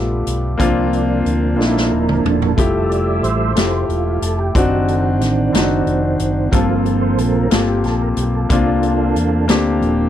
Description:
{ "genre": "slow gospel", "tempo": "61 BPM (dotted quarters)", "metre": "6/8", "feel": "straight", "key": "unclear", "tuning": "A4 = 439 Hz", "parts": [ { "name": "warm grand piano", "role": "accompaniment", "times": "0.0-10.1 s", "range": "G2 to A4", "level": "-18 LUFS", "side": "left 4 dB", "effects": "none" }, { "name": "dark French horn section", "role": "sustained chords", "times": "0.0-10.1 s", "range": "Eb3 to E5", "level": "-28 LUFS", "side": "right 4 dB", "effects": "none" }, { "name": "fingered electric bass", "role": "bass", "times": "0.0-10.1 s", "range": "Eb1 to E2", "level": "-20 LUFS", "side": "equal", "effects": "none" }, { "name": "swinging big-band drum kit", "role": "drums", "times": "0.3-10.0 s", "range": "hi-hat, kick drum, snare drum, toms", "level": "-20 LUFS", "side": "equal", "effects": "none" }, { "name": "tonewheel organ", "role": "sustained chords", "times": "0.6-10.1 s", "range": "Eb3 to E5", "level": "-21 LUFS", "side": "right 5 dB", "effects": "slow rotary speaker, chorus vibrato" } ], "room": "light reverb", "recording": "none", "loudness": "-14 LUFS", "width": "side -11 dB against mid", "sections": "0.0-10.1 A section", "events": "tonewheel organ solo 0.0-10.1; drum fill 1.6-2.6", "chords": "0.0 G9; 0.6 C9sus4; 2.6 Fmaj9; 4.6 D7b9/F#; 6.5 Gm11; 8.5 C9sus4" }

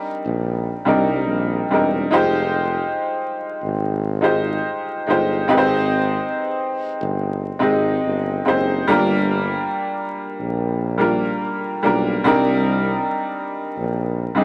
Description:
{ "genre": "hip hop", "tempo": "71 BPM", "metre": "4/4", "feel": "swing 57% on 16ths", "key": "C minor", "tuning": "A4 = 440 Hz", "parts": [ { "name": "bright upright piano", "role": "accompaniment", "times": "0.0-14.4 s", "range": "G3 to Eb5", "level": "-18 LUFS", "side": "equal", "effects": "cassette tape, low-pass filter" }, { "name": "warm tuba", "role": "bass", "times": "0.3-14.4 s", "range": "E1 to C2", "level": "-23 LUFS", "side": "equal", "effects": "none" } ], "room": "moderate studio reverb, RT60 0.6 s", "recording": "vinyl crackle", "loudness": "-17 LUFS", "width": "side -25 dB against mid", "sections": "0.0-14.4 A section", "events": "none", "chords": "0.0 Cm9; 2.1 Fm9; 5.5 Abmaj7; 8.9 Gm7; 12.3 Cm9" }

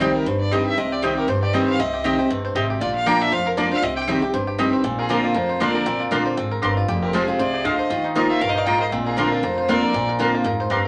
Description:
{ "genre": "bluegrass", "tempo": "236 BPM", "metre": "4/4", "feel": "swing 55% on 8ths", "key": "unclear", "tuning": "A4 = 444 Hz", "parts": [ { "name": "clear fiddle", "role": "melody", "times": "0.0-10.1 s", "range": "Ab4 to G5", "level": "-28 LUFS", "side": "equal", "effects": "none" }, { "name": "picked steel-string acoustic guitar", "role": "accompaniment", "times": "0.0-10.9 s", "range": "F2 to Bb4", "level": "-25 LUFS", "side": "equal", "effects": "none" }, { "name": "mandolin", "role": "stabs", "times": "0.0-10.8 s", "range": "Ab3 to C6", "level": "-26 LUFS", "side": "equal", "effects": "none" }, { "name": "upright bass", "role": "bass", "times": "0.0-10.8 s", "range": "F1 to Eb2", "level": "-34 LUFS", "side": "equal", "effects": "none" }, { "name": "bluegrass banjo", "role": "melody", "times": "0.8-10.9 s", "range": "C4 to C5", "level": "-29 LUFS", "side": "equal", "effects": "none" }, { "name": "clear fiddle", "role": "second line", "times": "5.0-10.1 s", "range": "F4 to Eb5", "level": "-32 LUFS", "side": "equal", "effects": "none" } ], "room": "wet small room reverb, RT60 0.6 s", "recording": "none", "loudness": "-21 LUFS", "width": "mono", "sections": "0.0-4.8 A section; 4.8-10.9 B section", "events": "none", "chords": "0.0 Cm; 2.8 Bb; 3.8 Cm; 4.8 Bbadd9; 6.9 Fmadd9; 7.9 Ebsus2; 8.9 Bbadd9" }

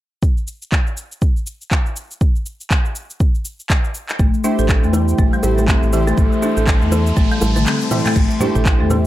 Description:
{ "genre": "afro house", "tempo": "121 BPM", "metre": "4/4", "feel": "swing 59% on 16ths", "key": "A minor", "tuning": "A4 = 436 Hz", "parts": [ { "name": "afro-pop drum kit", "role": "drums", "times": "0.2-9.0 s", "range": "crash cymbal, handclaps, shaker, toms", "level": "-24 LUFS", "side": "equal", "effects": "none" }, { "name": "electronic kick drum", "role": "drums", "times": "0.2-8.8 s", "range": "none", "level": "-16 LUFS", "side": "equal", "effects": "none" }, { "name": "dark analog pad", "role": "sustained chords", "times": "4.2-9.1 s", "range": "A4 to C6", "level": "-26 LUFS", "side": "equal", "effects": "chorus, vintage 12-bit sampler grit, sidechain pumping" }, { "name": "folk marimba with hard mallets", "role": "arpeggios", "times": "4.2-9.0 s", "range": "E3 to A4", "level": "-20 LUFS", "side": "left 2 dB", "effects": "sidechain pumping, tape echo" }, { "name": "round analog bass", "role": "bass", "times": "4.2-9.1 s", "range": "A1 to E2", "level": "-18 LUFS", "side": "equal", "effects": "sidechain pumping" }, { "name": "riser", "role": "sound effects", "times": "5.3-8.2 s", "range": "none", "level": "-30 LUFS", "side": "left 1 dB", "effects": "none" }, { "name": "warm analog keys", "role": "stabs", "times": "4.4-9.1 s", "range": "A3 to C5", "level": "-23 LUFS", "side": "right 2 dB", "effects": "chorus, phaser, sidechain pumping, tape echo" }, { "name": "bongos", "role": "percussion", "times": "4.9-9.0 s", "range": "none", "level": "-26 LUFS", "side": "right 1 dB", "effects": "none" }, { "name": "congas", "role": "percussion", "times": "8.4-9.0 s", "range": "none", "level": "-24 LUFS", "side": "left 1 dB", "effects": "none" } ], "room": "light reverb, digital ambience", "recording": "dark, warm production", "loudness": "-15 LUFS", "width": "side -14 dB against mid", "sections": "0.2-8.2 A section", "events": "riser 5.3-8.2; drum fill 7.2-8.2; kick drops out 7.7-8.2", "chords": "0.2 Am7" }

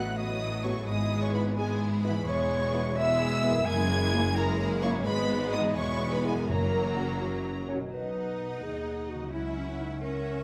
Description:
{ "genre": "classical, dramatic, fast romantic movement for symphony orchestra", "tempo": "86 BPM (dotted quarters)", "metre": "6/8", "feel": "straight", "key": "B major", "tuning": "A4 = 440 Hz", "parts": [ { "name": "clear symphonic violin section", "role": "melody", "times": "0.0-10.4 s", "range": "F#5 to G#6", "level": "-40 LUFS", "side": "equal", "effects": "none" }, { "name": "clear symphonic violin section", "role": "second line", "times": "0.0-10.4 s", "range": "C#4 to E5", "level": "-44 LUFS", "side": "equal", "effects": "none" }, { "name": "dark clarinet", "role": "second line", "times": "0.0-10.4 s", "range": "C#4 to G#5", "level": "-37 LUFS", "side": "equal", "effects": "none" }, { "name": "mellow large flute ensemble", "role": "second line", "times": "0.0-7.7 s", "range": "G#4 to G#5", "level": "-37 LUFS", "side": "equal", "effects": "none" }, { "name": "clear symphonic viola section", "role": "accompaniment", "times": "0.0-10.4 s", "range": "F#3 to D#4", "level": "-38 LUFS", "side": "equal", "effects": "none" }, { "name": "mellow French horn section", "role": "sustained chords", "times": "0.0-7.8 s", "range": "A#3 to F#4", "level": "-39 LUFS", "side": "equal", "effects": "none" }, { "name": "concert harp", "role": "arpeggios", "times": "0.0-10.4 s", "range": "E2 to G#4", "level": "-40 LUFS", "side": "equal", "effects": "none" }, { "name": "bright symphonic cello section", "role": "bass", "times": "0.0-10.4 s", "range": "E2 to E4", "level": "-36 LUFS", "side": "equal", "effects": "none" }, { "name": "clear symphonic double bass section", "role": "bass", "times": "0.0-10.4 s", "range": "E1 to D#2", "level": "-36 LUFS", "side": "equal", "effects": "none" }, { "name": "timpani", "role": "percussion", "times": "6.5-7.2 s", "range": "F#2", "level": "-37 LUFS", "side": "equal", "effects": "none" } ], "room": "wet recital hall reverb, RT60 1.6 s", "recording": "none", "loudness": "-29 LUFS", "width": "mono", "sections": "0.0-7.9 A section; 7.9-10.4 B section", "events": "none", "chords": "0.0 B7/A; 0.9 E/G#; 2.3 C#m7/E; 3.7 F#9; 5.1 G#m; 5.8 E; 6.5 F#; 7.9 B; 9.3 F#7/C#" }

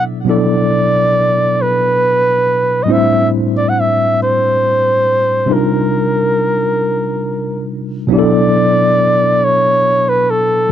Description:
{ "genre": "R&B", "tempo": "46 BPM (dotted quarters)", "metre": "6/8", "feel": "straight", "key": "B phrygian", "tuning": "A4 = 439 Hz", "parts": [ { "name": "warm flugelhorn", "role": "melody", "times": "0.0-10.7 s", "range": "A4 to F#5", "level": "-13 LUFS", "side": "equal", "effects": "none" }, { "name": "tine electric piano", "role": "accompaniment", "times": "0.0-10.7 s", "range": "A2 to C5", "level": "-15 LUFS", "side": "equal", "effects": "overdrive, fast stereo tremolo" } ], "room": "light reverb", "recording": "dry, close 1970s-style studio recording", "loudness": "-11 LUFS", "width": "side -10 dB against mid", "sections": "0.0-8.1 A section; 8.1-10.7 B section", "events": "none", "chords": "0.0 Bm7; 2.9 Am7; 5.5 Cm11; 8.1 Bm11" }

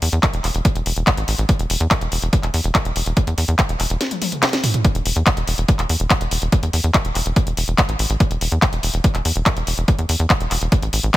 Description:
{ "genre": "psychedelic trance", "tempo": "143 BPM", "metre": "4/4", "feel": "straight", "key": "unclear", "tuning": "A4 = 440 Hz", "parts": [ { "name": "tight sequencer bass", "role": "bass", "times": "0.0-11.1 s", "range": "E1 to E2", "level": "-20 LUFS", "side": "equal", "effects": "none" }, { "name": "techno drum kit", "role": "drums", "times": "0.0-11.2 s", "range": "handclaps, hi-hat, snare drum, toms", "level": "-21 LUFS", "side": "left 1 dB", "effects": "none" }, { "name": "electronic kick drum", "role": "drums", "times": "0.2-11.2 s", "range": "none", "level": "-17 LUFS", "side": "equal", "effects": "none" } ], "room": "little or no reverb", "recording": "none", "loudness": "-16 LUFS", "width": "side -16 dB against mid", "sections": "0.0-11.2 A section", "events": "drum fill 4.0-4.8", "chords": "none" }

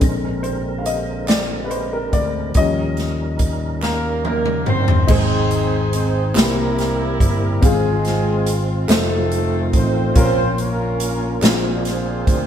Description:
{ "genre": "slow gospel", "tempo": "47 BPM (dotted quarters)", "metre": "6/8", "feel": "straight", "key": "unclear", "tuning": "A4 = 442 Hz", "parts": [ { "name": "dark baby grand piano", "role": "accompaniment", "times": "0.0-12.5 s", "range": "Ab2 to F5", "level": "-24 LUFS", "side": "left 4 dB", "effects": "none" }, { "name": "percussive tonewheel organ", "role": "sustained chords", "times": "0.0-12.5 s", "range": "D3 to Bb4", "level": "-27 LUFS", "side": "right 1 dB", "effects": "slow rotary speaker, overdrive, chorus vibrato" }, { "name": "fingered electric bass", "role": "bass", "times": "0.0-12.5 s", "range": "F1 to Eb2", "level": "-22 LUFS", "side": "equal", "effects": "none" }, { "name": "swinging big-band drum kit", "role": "drums", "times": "0.0-12.5 s", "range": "crash cymbal, hi-hat, kick drum, snare drum, toms", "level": "-20 LUFS", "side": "equal", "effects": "none" }, { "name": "group handclap", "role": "percussion", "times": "1.3-11.8 s", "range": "none", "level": "-32 LUFS", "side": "right 2 dB", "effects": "none" }, { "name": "mellow horn section", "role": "melody", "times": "3.8-12.5 s", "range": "Ab3 to C5", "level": "-22 LUFS", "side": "right 1 dB", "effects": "none" } ], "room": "moderate stone room reverb, RT60 1.2 s", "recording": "band playing live in one room", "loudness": "-16 LUFS", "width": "side -9 dB against mid", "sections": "0.0-5.1 A section; 5.1-12.5 B section", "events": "grand piano solo 0.0-5.1; drum fill 3.8-5.1", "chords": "0.0 Bb9; 2.6 Eb7; 5.1 Ab; 6.4 C7; 7.6 Fm/Ab; 8.9 F7; 10.2 Bbm; 11.4 Bb9" }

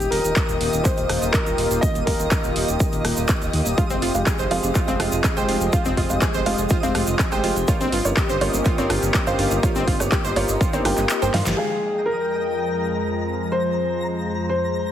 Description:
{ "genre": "progressive house", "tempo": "123 BPM", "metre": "4/4", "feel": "straight", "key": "F minor", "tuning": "A4 = 441 Hz", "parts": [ { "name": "dark grand piano", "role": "melody", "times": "0.0-3.5, 11.6-14.9 s", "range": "G4 to Eb5", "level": "-24 LUFS", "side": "left 2 dB", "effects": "vintage 12-bit sampler grit, sidechain pumping, digital delay" }, { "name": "lush unison pad", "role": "sustained chords", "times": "0.0-14.9 s", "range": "F2 to G5", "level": "-28 LUFS", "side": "equal", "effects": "chorus, sidechain pumping" }, { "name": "dark detuned saw bass", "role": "bass", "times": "0.0-11.5 s", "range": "Eb1 to G2", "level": "-26 LUFS", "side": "equal", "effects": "sidechain pumping" }, { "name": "big-room dance drum kit", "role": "drums", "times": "0.0-11.6 s", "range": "handclaps, hi-hat, rim click, snare drum", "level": "-26 LUFS", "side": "equal", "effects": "overdrive, low-pass filter on hats, studio reverb, low-pass filter on cymbals, low-pass filter on snare" }, { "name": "tube shaker", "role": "percussion", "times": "0.0-11.6 s", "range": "none", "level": "-33 LUFS", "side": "right 3 dB", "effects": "none" }, { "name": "twinkling granular texture", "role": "texture", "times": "0.0-14.9 s", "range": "Eb5 to Bb5", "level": "-32 LUFS", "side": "equal", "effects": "built-in reverb, sidechain pumping" }, { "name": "electronic kick drum", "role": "drums", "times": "0.4-10.7 s", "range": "none", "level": "-22 LUFS", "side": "equal", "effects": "overdrive, studio reverb" }, { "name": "analog pluck", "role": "arpeggios", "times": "3.8-11.4 s", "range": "C4 to C5", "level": "-26 LUFS", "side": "right 1 dB", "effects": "chorus, sidechain pumping, digital delay" }, { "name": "felt-muted upright piano", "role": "stabs", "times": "3.8-14.9 s", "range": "Ab3 to G5", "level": "-26 LUFS", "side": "right 1 dB", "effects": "sidechain pumping, low-pass filter, digital delay" } ], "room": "light reverb, digital ambience", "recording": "heavily compressed radio sound, multiband compression", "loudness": "-18 LUFS", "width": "side -10 dB against mid", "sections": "0.0-11.6 A section; 11.6-14.9 B section", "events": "kick drops out 11.1-11.6; drum fill 11.3; band accent 11.5; filter sweep on felt piano 11.6-14.9", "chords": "0.0 Ebadd9; 3.8 Fmadd9; 7.7 Gdim; 11.6 Fmadd9" }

